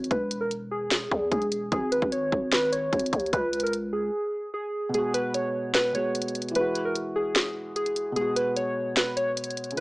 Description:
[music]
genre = hip hop, trap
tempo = 149 BPM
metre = 4/4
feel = half-time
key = G# minor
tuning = A4 = 440 Hz
[part]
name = warbly lo-fi synth keys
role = melody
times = 0.0-9.8 s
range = G#4 to C#5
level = -27 LUFS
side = equal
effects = chorus, low-pass filter
[part]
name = growling 808-style bass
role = bass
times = 0.0-4.1 s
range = E1 to E2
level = -30 LUFS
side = equal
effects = none
[part]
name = trap drum kit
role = drums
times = 0.0-9.8 s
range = hi-hat, kick drum, snare drum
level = -27 LUFS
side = equal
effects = overdrive
[part]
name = felt-muted upright piano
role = accompaniment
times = 4.9-9.8 s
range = B2 to F#4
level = -31 LUFS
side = equal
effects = low-pass filter
[sound]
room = little or no reverb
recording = dry, gritty hardware recording, small speaker sound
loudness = -24 LUFS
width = side -23 dB against mid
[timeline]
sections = 0.0-9.8 A section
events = break 4.1-4.9; kick muted 4.9-9.8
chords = 0.1 E; 1.7 G#5; 3.3 C#5; 4.9 G#m7; 6.6 Eadd9; 8.2 G#m7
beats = | 0.11 0.51 0.91 1.32 | 1.72 2.12 2.52 2.93 | 3.33 3.73 4.14 4.54 | 4.94 5.34 5.75 6.15 | 6.55 6.96 7.36 7.76 | 8.16 8.56 8.97 9.37 | 9.77

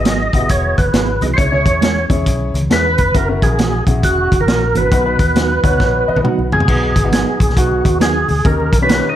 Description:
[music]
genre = uptempo 1960s-style soul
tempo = 136 BPM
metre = 4/4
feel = swing 64% on 8ths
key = B major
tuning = A4 = 440 Hz
[part]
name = percussive tonewheel organ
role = melody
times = 0.0-9.2 s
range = F#4 to D#5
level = -17 LUFS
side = right 1 dB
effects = overdrive, chorus vibrato, slow rotary speaker, tape echo
[part]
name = warm upright piano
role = accompaniment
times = 0.0-9.1 s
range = B2 to G#5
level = -22 LUFS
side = left 3 dB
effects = none
[part]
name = mellow electric guitar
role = stabs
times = 0.0-9.0 s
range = D#3 to G#4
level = -23 LUFS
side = right 6 dB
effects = phaser
[part]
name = vintage muted fingered electric bass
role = bass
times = 0.0-9.0 s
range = E1 to B2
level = -19 LUFS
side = equal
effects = tube saturation
[part]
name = crunchy breakbeat drum kit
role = drums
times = 0.1-9.0 s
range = crash cymbal, hi-hat, kick drum, snare drum, toms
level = -16 LUFS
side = equal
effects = none
[part]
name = congas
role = percussion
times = 0.1-9.2 s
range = none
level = -28 LUFS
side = left 1 dB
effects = none
[sound]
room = moderate large studio reverb, RT60 1.4 s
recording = none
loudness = -12 LUFS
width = side -11 dB against mid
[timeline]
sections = 0.0-6.7 A section; 6.7-9.2 B section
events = drum fill 5.8-6.7; upright piano fill 5.8-6.7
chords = 0.0 Eadd9; 1.4 C#m; 3.2 F#7; 4.9 B; 6.7 B6; 8.5 D#7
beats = 0.06 0.50 0.94 | 1.38 1.82 2.27 2.71 | 3.15 3.59 4.03 4.48 | 4.92 5.36 5.80 6.24 | 6.68 7.13 7.57 8.01 | 8.45 8.89

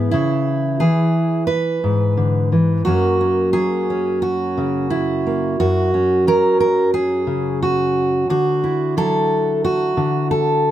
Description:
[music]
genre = folk, solo fingerstyle acoustic guitar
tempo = 88 BPM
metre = 4/4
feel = straight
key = unclear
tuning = A4 = 440 Hz
[part]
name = fingerpicked steel-string acoustic guitar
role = solo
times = 0.0-10.7 s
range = F#2 to B4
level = -16 LUFS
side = equal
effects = none
[sound]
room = light reverb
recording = none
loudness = -16 LUFS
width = side -12 dB against mid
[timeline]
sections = 0.0-10.7 A section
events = none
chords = 0.0 C#m7; 2.9 F#; 8.3 Dadd9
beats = | 0.12 0.80 1.49 2.17 | 2.86 3.54 4.23 4.91 | 5.59 6.26 6.93 7.61 | 8.29 8.96 9.63 10.30

